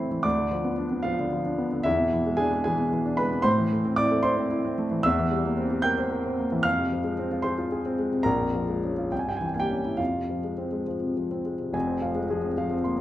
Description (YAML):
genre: classical, virtuoso piano study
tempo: 74 BPM (dotted quarters)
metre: 6/8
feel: rubato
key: A minor, F minor from 5.0 s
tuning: A4 = 439 Hz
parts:
  - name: warm grand piano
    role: solo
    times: 0.0-13.0 s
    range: F1 to G6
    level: -24 LUFS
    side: equal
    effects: none
room: wet recital hall reverb, RT60 1.4 s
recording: none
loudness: -24 LUFS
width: side -14 dB against mid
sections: 0.0-11.7 A section; 11.7-13.0 B section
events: none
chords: 0.2 Bdim/D; 1.9 E7; 3.5 Am; 5.0 C7/E; 6.6 Fm; 8.3 Bbm7; 9.1 C7b9; 10.0 Fm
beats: | 0.24 1.04 | 1.85 2.65 | 3.46 4.25 | 5.04 5.84 | 6.65 7.45 | 8.26 9.11 | 9.99 10.87 | 11.74 12.57